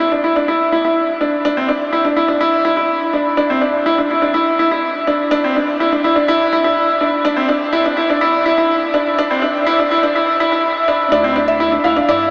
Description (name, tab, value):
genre	piano and strings electronica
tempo	124 BPM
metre	4/4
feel	straight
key	unclear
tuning	A4 = 440 Hz
part	clear upright piano	riff	0.0-12.3 s	C4 to E4	-16 LUFS	equal	shimmer reverb, tape echo
part	felt-muted upright piano	melody	11.1-12.3 s	D5 to F5	-20 LUFS	equal	analog chorus, shimmer reverb, tape echo
part	round analog bass	bass	11.1-12.3 s	D2 to G2	-30 LUFS	equal	none
room	wet huge ambient reverb, RT60 8.7 s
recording	dreamy mix soaked in reverb, high-pass filter, small speaker sound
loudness	-15 LUFS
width	mono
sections	0.0-11.1 A section; 11.1-12.3 B section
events	build-up 0.0-11.1; drop 11.1-12.3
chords	0.0 Cadd9 (rootless); 11.1 Dsus2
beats	0.48 0.96 | 1.45 1.93 2.41 2.90 | 3.38 3.87 4.35 4.83 | 5.32 5.80 6.29 6.77 | 7.25 7.74 8.22 8.70 | 9.19 9.67 10.16 10.64 | 11.12 11.61 12.09